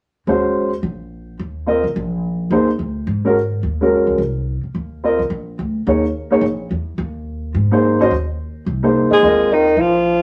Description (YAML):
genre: modal jazz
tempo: 214 BPM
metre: 4/4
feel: swing 59% on 8ths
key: Eb dorian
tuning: A4 = 437 Hz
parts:
  - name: warm upright piano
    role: accompaniment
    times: 0.3-9.6 s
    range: Ab3 to Eb5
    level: -18 LUFS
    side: equal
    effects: none
  - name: upright bass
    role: bass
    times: 0.3-10.2 s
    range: Bb1 to Ab2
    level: -25 LUFS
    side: equal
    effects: none
  - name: breathy alto saxophone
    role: melody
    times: 9.1-10.2 s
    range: Eb4 to Ab4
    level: -18 LUFS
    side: equal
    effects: none
  - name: trombone with cup mute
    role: second line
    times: 9.1-10.2 s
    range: Eb3 to Ab3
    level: -18 LUFS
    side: equal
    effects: none
room: moderate studio reverb, RT60 0.7 s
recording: none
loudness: -18 LUFS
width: mono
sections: 0.3-9.2 A section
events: none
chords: 0.3 Ebm11; 2.5 Ab; 4.8 Eb7(no3); 7.0 Ab/Eb; 9.2 Ebsus4